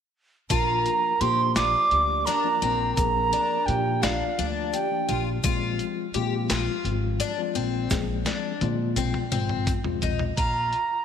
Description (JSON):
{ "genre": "progressive instrumental, band music in an uneven meter", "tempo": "170 BPM (eighths)", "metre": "7/8", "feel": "straight", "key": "Bb mixolydian", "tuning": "A4 = 440 Hz", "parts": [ { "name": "bright reedy baroque flute", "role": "melody", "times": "0.5-5.2, 10.4-11.0 s", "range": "F5 to D6", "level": "-24 LUFS", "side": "right 3 dB", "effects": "slapback echo" }, { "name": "vibraphone with soft mallets", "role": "second line", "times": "0.5-5.2 s", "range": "F4 to D5", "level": "-33 LUFS", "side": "right 11 dB", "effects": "none" }, { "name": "mellow tine electric piano", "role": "accompaniment", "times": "0.5-10.3 s", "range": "F3 to Ab4", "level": "-32 LUFS", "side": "left 10 dB", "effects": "medium stereo tremolo" }, { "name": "picked twelve-string acoustic guitar", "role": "arpeggios", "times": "0.5-10.8 s", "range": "C4 to G4", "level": "-30 LUFS", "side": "left 8 dB", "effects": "none" }, { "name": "upright bass", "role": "bass", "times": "0.5-10.7 s", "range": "Ab1 to Bb2", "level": "-29 LUFS", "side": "equal", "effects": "none" }, { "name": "boom bap sampler-style drum kit", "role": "drums", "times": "0.5-10.9 s", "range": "hi-hat, kick drum, snare drum, toms", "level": "-29 LUFS", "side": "equal", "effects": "none" }, { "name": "tube shaker", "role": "percussion", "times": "0.5-10.0 s", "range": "none", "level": "-42 LUFS", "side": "right 15 dB", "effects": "none" } ], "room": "moderate echo chamber reverb, RT60 2.7 s", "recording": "1960s-style stereo with parts hard left and right", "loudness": "-22 LUFS", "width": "side -8 dB against mid", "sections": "0.5-10.4 A section", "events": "drum fill 7.9-10.4", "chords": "0.5 Bb; 5.4 Fm; 10.4 Bb5", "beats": "| 0.50 0.85 1.21 1.56 1.91 2.27 2.62 | 2.97 3.33 3.68 4.03 4.38 4.74 5.09 | 5.44 5.79 6.14 6.50 6.85 7.20 7.55 | 7.91 8.26 8.61 8.96 9.32 9.67 10.02 | 10.38 10.73" }